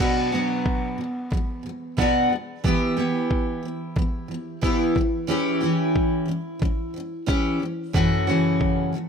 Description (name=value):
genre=acoustic pop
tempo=91 BPM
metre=4/4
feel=swing 55% on 16ths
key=B minor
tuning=A4 = 441 Hz
part: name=picked steel-string acoustic guitar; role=accompaniment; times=0.0-9.1 s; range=F#2 to G4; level=-22 LUFS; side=equal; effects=double-tracked left and right
part: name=dusty soul sampler-style drum kit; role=drums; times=0.0-8.8 s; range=crash cymbal, kick drum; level=-25 LUFS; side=equal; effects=overdrive
room=light reverb, studio ambience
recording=none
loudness=-21 LUFS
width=side -6 dB against mid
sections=0.0-9.1 A section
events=none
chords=0.0 Bm; 2.6 Em; 5.0 C#dim/E; 7.9 F#m7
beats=0.66 1.32 1.98 | 2.64 3.31 3.97 4.63 | 5.29 5.96 6.62 7.28 | 7.94 8.61